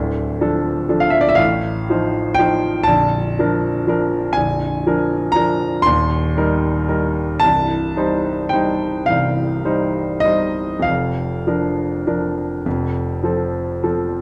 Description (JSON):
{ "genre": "classical, romantic nocturne for solo piano", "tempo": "32-42 BPM (dotted quarters)", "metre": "6/8", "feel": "rubato", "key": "Bb major", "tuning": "A4 = 440 Hz", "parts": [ { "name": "clear grand piano", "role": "solo", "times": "0.0-14.2 s", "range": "Bb0 to C6", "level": "-18 LUFS", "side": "equal", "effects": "none" } ], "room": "moderate recital hall reverb, RT60 1.7 s", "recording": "dark, warm production", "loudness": "-19 LUFS", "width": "mono", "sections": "0.0-14.2 A section", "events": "none", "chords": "0.0 Dm; 1.4 F7/A; 2.9 Bb; 5.8 Eb6; 7.4 Cm; 10.8 Bb/F; 12.6 F" }